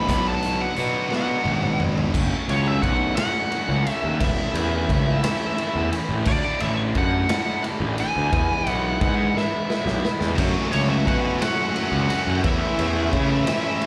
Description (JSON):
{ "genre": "quiet-loud alternative rock", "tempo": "58 BPM (dotted quarters)", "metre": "6/8", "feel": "straight", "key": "F# minor", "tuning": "A4 = 439 Hz", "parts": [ { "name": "high-gain lead guitar", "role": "melody", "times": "0.0-13.9 s", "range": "C#5 to B5", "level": "-29 LUFS", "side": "equal", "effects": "distortion" }, { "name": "distorted electric guitar", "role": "riff", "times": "0.0-13.9 s", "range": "B2 to F#4", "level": "-31 LUFS", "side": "equal", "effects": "distortion, slapback echo" }, { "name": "thick fuzz guitar", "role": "riff", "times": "0.0-2.1, 10.3-13.9 s", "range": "B2 to F#4", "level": "-29 LUFS", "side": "equal", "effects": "distortion, slapback echo" }, { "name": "fuzz picked electric bass", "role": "bass", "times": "0.0-13.4 s", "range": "E1 to C#3", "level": "-26 LUFS", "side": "equal", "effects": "overdrive" }, { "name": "raw garage drum kit", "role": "drums", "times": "0.1-13.9 s", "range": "crash cymbal, hi-hat, kick drum, ride cymbal, snare drum, toms", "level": "-29 LUFS", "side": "equal", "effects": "none" } ], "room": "studio ambience", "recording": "live gig heard through the venue's PA, club reverb", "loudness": "-22 LUFS", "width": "mono", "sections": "0.0-2.1 A section; 2.1-13.9 B section", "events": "half time 0.0-2.1; lead electric guitar solo 0.0-2.1; drum fill 1.1-2.1, 9.4-10.4", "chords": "0.1 Bm; 2.1 F#m; 4.2 A/E; 6.3 Dsus2; 8.3 E; 10.4 F#m; 12.5 A/E" }